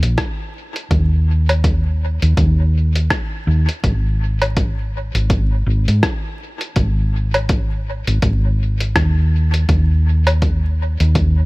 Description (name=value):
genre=ambient dub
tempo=82 BPM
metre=4/4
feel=swing 59% on 16ths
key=unclear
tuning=A4 = 441 Hz
part: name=hollow-body short-scale fingered electric bass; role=bass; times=0.0-11.5 s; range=G#1 to G#2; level=-15 LUFS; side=equal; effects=none
part: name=lo-fi sampler-style drum kit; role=drums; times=0.0-11.3 s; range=hi-hat, rim click, woodblock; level=-24 LUFS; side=equal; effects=dub echo
part: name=electronic kick drum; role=drums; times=0.2-11.3 s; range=none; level=-20 LUFS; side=equal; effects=overdrive
room=little or no reverb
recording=vinyl crackle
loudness=-14 LUFS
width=side -23 dB against mid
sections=0.0-11.5 A section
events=none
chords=none